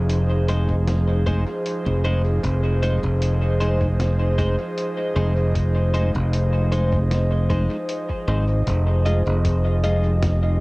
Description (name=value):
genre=ambient dub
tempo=77 BPM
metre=4/4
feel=swing 53% on 16ths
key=F minor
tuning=A4 = 439 Hz
part: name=airy breathy pad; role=sustained chords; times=0.0-10.6 s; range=F3 to Eb5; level=-26 LUFS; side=equal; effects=chorus, cassette tape
part: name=modern bright fingered electric bass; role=bass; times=0.0-10.6 s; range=F1 to Ab1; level=-19 LUFS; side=equal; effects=tube saturation
part: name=lo-fi sampler-style drum kit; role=drums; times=0.1-10.4 s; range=hi-hat, snare drum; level=-35 LUFS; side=equal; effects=small room ambience, cassette tape, dub echo
part: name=twelve-string electric guitar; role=stabs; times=0.5-10.1 s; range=Ab3 to Eb5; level=-30 LUFS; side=left 1 dB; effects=cassette tape, dub echo, plate reverb
part: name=electronic kick drum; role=drums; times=0.7-10.4 s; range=none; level=-27 LUFS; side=equal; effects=small room ambience, cassette tape
room=light reverb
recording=home recording on cassette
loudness=-18 LUFS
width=side -24 dB against mid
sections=0.0-8.7 A section; 8.7-10.6 B section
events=none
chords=0.0 Fm7